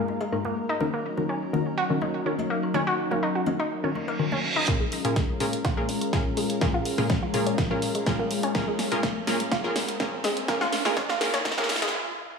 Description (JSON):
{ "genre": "progressive house", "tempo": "124 BPM", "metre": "4/4", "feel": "straight", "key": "Bb minor", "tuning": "A4 = 436 Hz", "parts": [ { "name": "lush unison pad", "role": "sustained chords", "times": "0.0-11.9 s", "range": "Gb3 to Bb4", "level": "-30 LUFS", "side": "left 1 dB", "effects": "chorus, sidechain pumping" }, { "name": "analog pluck", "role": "arpeggios", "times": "0.0-11.9 s", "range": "Ab3 to Gb4", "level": "-30 LUFS", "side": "right 1 dB", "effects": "chorus, sidechain pumping, digital delay" }, { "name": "wide unison pluck", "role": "stabs", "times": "0.0-11.7 s", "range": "Ab2 to Bb4", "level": "-29 LUFS", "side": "left 2 dB", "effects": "sidechain pumping, digital delay" }, { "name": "congas, cowbell and woodblock", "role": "percussion", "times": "0.1-4.4 s", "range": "none", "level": "-37 LUFS", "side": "left 6 dB", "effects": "sidechain pumping on perc" }, { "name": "reverse cymbal and riser", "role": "sound effects", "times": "4.0-11.9 s", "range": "none", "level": "-34 LUFS", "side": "right 2 dB", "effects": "none" }, { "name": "big-room dance drum kit", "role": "drums", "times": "4.7-12.0 s", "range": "hi-hat, snare drum", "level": "-30 LUFS", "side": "equal", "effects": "none" }, { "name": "electronic kick drum", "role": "drums", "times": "4.7-11.6 s", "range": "none", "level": "-28 LUFS", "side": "equal", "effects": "none" } ], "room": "wet recital hall reverb, RT60 1.5 s", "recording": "high-pass filter, studio ambience", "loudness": "-24 LUFS", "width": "side -5 dB against mid", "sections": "0.0-4.7 A section; 4.7-12.4 B section", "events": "reverse cymbal 4.0-4.7; build-up 4.7-12.4; drum fill 4.7-11.9; riser 4.7-11.9; filter sweep on synth arpeggio sound 4.7-12.4; filter sweep 4.7-12.4; stop 11.9-12.4", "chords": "0.0 Absus2; 0.8 Ebm7; 4.7 Bbm7", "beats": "0.32 | 0.81 1.29 1.78 2.26 | 2.74 3.23 3.71 4.20 | 4.68 5.16 5.65 6.13 | 6.61 7.10 7.58 8.07 | 8.55 9.03 9.52 10.00 | 10.48 10.97 11.45 11.94" }